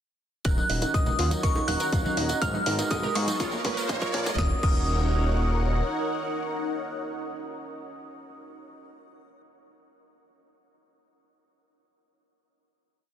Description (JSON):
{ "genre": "progressive house", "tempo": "122 BPM", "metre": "4/4", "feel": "straight", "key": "Eb minor", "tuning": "A4 = 440 Hz", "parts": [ { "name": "glassy wavetable pluck", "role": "arpeggios", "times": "0.4-8.8 s", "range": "Bb3 to Bb4", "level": "-36 LUFS", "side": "equal", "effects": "chorus, sidechain pumping, digital delay" }, { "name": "tambourine", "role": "percussion", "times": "0.4-4.4 s", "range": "none", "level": "-38 LUFS", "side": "right 3 dB", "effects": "none" }, { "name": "glassy synth bell", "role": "melody", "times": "0.5-8.8 s", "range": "Db6 to Gb6", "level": "-32 LUFS", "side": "equal", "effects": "chorus, sidechain pumping, digital delay" }, { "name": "soft round pluck", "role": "second line", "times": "0.5-8.8 s", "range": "Db6 to Gb6", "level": "-41 LUFS", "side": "left 2 dB", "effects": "none" }, { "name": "lush unison pad", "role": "sustained chords", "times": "0.5-8.6 s", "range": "Ab3 to Gb5", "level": "-34 LUFS", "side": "equal", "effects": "chorus, phaser, sidechain pumping" }, { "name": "warm grand piano", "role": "stabs", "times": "0.5-8.8 s", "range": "Ab2 to F5", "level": "-35 LUFS", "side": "right 3 dB", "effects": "sidechain pumping, low-pass filter, digital delay" }, { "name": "fat analog bass", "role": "bass", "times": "0.5-5.8 s", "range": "Eb1 to Ab2", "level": "-28 LUFS", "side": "equal", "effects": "tube saturation, sidechain pumping" }, { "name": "electronic kick drum", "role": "drums", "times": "0.5-4.8 s", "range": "none", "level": "-27 LUFS", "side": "equal", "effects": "none" }, { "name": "house drum kit", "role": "drums", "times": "0.5-4.8 s", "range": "crash cymbal, hi-hat, snare drum", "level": "-35 LUFS", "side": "left 2 dB", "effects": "high-pass filter on hats, high-pass filter on snare, high-pass filter on cymbals" }, { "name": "riser", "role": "sound effects", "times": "2.6-4.4 s", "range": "none", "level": "-38 LUFS", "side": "right 2 dB", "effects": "none" }, { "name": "congas and bongos", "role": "percussion", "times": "0.6-4.4 s", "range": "none", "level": "-37 LUFS", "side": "right 3 dB", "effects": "sidechain pumping on perc" } ], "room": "light reverb, digital ambience", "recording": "dense, heavily limited modern master, high-pass filter", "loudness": "-24 LUFS", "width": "side -10 dB against mid", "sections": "0.5-4.4 build; 4.4-8.3 final chord", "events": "build-up 0.5-4.4; filter sweep on grand piano 0.5-4.4; filter sweep 0.5-4.4; drum fill 2.4-4.4; riser 2.6-4.4", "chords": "0.5 Ebm7; 2.4 Abm7; 3.4 Bbm; 4.4 Ebm7" }